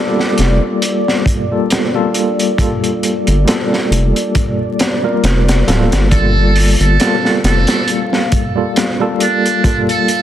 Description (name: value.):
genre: trip hop.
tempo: 68 BPM.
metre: 4/4.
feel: swing 55% on 16ths.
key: G minor.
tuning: A4 = 440 Hz.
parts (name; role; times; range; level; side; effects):
tine electric piano; accompaniment; 0.0-10.2 s; G3 to Bb4; -17 LUFS; left 1 dB; medium stereo tremolo, tape echo.
deep dark ambient pad; sustained chords; 0.0-10.2 s; D5 to F5; -23 LUFS; left 1 dB; chorus, built-in reverb.
crunchy breakbeat drum kit; drums; 0.2-10.2 s; hi-hat, kick drum, snare drum; -16 LUFS; equal; none.
round analog bass; bass; 0.4-7.7 s; D1 to G1; -12 LUFS; equal; none.
trumpet with metal mute; melody; 6.1-10.2 s; D4 to A4; -18 LUFS; right 6 dB; vintage 12-bit sampler grit, tape echo.
room: light reverb, small room ambience.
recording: dense, heavily limited modern master, vinyl crackle.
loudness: -12 LUFS.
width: side -11 dB against mid.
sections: 0.0-10.2 A section.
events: none.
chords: 0.0 Gm9.